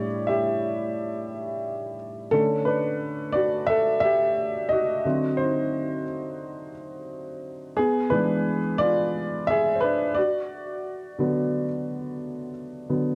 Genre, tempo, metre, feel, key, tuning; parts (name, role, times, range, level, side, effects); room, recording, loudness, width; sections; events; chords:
hip hop; 88 BPM; 4/4; swing 56% on 16ths; D major; A4 = 443 Hz
dark upright piano; solo; 0.0-13.2 s; A2 to E5; -26 LUFS; equal; cassette tape
light reverb, studio reverb; -25 LUFS; mono
0.0-13.2 A section
upright piano solo 0.0-13.2
0.0 A7sus4; 2.3 Dmaj7; 5.0 D7b9; 7.8 E7b9; 10.2 D6